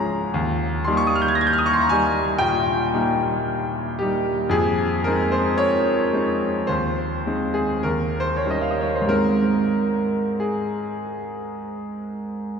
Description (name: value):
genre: classical, romantic nocturne for solo piano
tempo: 45-59 BPM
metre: 4/4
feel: rubato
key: Ab major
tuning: A4 = 441 Hz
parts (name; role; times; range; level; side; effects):
- clear grand piano; solo; 0.0-12.6 s; Eb2 to Bb6; -19 LUFS; equal; none
room: wet church reverb, RT60 4.1 s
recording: minimal, uncompressed stereo recording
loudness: -19 LUFS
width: side -6 dB against mid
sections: 0.0-12.6 A section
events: none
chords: 0.3 Eb; 4.5 Fm7; 6.7 Ab/Eb; 7.8 Eb7; 9.1 Ab